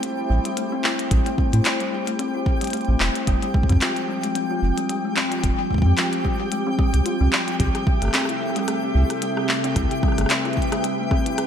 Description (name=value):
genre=IDM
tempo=111 BPM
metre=4/4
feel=swing 56% on 16ths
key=unclear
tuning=A4 = 445 Hz
part: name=glassy FM pad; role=sustained chords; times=0.0-11.5 s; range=C3 to G5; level=-27 LUFS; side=right 1 dB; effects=ensemble chorus, built-in reverb, sidechain pumping
part: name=kalimba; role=arpeggios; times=0.0-11.3 s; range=G3 to F4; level=-26 LUFS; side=left 3 dB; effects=vintage 12-bit sampler grit, ping-pong delay
part: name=glitchy drum kit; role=drums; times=0.0-11.5 s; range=handclaps, hi-hat, rim click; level=-25 LUFS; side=equal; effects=studio reverb, gated reverb, ping-pong delay
part: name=twinkling granular texture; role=texture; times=0.0-11.5 s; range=G4 to G5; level=-30 LUFS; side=equal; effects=built-in reverb
part: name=warm sub bass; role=bass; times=0.3-10.3 s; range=E1 to A2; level=-19 LUFS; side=equal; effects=none
part: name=electronic kick drum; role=drums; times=1.1-11.2 s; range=none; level=-21 LUFS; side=equal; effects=studio reverb
room=moderate lush hall reverb, RT60 2.1 s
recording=bright 1980s-style digital production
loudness=-19 LUFS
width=side -8 dB against mid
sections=0.0-11.5 A section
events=none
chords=0.0 Am7; 3.3 Fsus2; 7.6 C6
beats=0.03 0.57 | 1.11 1.65 2.19 2.73 | 3.27 3.81 4.35 4.89 | 5.43 5.98 6.52 7.06 | 7.60 8.14 8.68 9.22 | 9.76 10.30 10.84 11.38